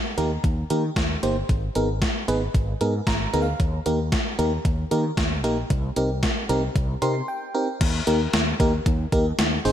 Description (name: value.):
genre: synth-pop.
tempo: 114 BPM.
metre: 4/4.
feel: straight.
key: Eb major.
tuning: A4 = 441 Hz.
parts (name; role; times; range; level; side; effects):
FM electric piano; accompaniment; 0.2-9.7 s; Bb3 to C6; -25 LUFS; right 1 dB; chorus.
fretless electric bass; bass; 0.2-9.7 s; G1 to Eb3; -26 LUFS; equal; ensemble chorus.
gated 80s digital drum machine; drums; 0.2-9.7 s; crash cymbal, hi-hat, kick drum, snare drum; -24 LUFS; equal; gated reverb, gated reverb snare, overdrive.
room: light reverb, digital ambience.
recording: none.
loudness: -21 LUFS.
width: side -10 dB against mid.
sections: 0.0-7.8 A section; 7.8-9.7 B section.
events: FM electric piano fill 2.8-3.6, 6.8-7.8; break 7.3-7.8.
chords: 0.0 Eb; 1.5 Abmadd9; 3.6 Eb; 5.7 Cm7; 7.8 Eb.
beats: 0.44 0.97 | 1.49 2.02 2.54 3.07 | 3.60 4.12 4.65 5.18 | 5.70 6.23 6.75 7.28 | 7.81 8.33 8.86 9.39.